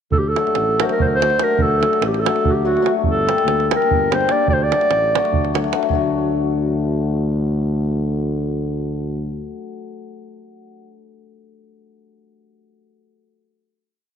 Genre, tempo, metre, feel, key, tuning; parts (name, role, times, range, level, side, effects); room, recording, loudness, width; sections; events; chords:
balkan folk, Balkan wedding band; 292 BPM (eighths); 7/8; straight; D major; A4 = 440 Hz
mellow clarinet; melody; 0.1-5.5 s; F#4 to D5; -18 LUFS; right 1 dB
dark tuba; bass; 0.1-9.5 s; G1 to D2; -22 LUFS; right 1 dB
davul; percussion; 0.1-6.1 s; -23 LUFS; right 6 dB
cimbalom; accompaniment; 0.4-10.8 s; F#3 to G4; -23 LUFS; left 9 dB
moderate plate reverb, RT60 2.9 s; 1960s-style stereo with parts hard left and right; -16 LUFS; side -8 dB against mid
0.1-5.9 A section; 5.9-8.8 final chord
0.1 D; 3.0 Gm; 4.5 D